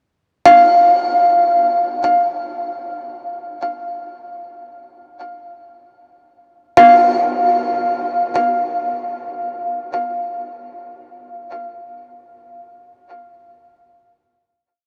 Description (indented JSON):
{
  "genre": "ambient",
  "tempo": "free time",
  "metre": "none",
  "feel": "none",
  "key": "unclear",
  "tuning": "A4 = 440 Hz",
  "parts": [
    { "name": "kalimba", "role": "solo", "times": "0.5-11.0 s", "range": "F5", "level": "-16 LUFS", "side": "equal", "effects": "delay" }
  ],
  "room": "wet huge ambient reverb, RT60 7.7 s",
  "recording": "worn, warbling old tape, cassette tape, warbly pitch drift",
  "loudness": "-15 LUFS",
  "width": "mono",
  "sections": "0.4-6.8 A section; 6.8-9.9 final note",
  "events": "none",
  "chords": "none"
}